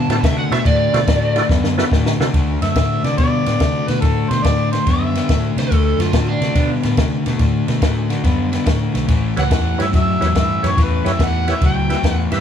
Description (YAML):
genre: electric blues shuffle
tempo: 142 BPM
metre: 4/4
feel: swing 67% on 8ths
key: D mixolydian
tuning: A4 = 441 Hz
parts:
  - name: overdriven slide guitar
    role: second line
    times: 0.0-1.5, 5.6-6.7 s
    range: D4 to A5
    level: -21 LUFS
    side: right 2 dB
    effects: none
  - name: overdriven semi-hollow guitar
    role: riff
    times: 0.0-12.4 s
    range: A2 to B3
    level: -21 LUFS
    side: left 6 dB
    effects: none
  - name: vintage muted fingered electric bass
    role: bass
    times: 0.0-12.4 s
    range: A1 to C3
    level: -20 LUFS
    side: right 1 dB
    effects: none
  - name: tonewheel organ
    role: accompaniment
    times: 0.1-2.3, 9.4-12.4 s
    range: E4 to E5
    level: -25 LUFS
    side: right 6 dB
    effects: slow rotary speaker, overdrive, chorus vibrato
  - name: compact cocktail drum kit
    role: drums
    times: 0.1-12.4 s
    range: kick drum, ride cymbal, snare drum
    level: -20 LUFS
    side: equal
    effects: none
  - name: mellow harmonica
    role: melody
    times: 2.6-5.6, 9.4-12.3 s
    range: A4 to G5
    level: -22 LUFS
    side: equal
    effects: overdrive
room: light reverb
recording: none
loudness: -14 LUFS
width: side -8 dB against mid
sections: 0.0-2.3 A section; 2.3-12.4 B section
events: electric slide guitar solo 0.0-2.3; drum fill 1.5-2.3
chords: 0.0 D9; 2.3 D; 9.1 A9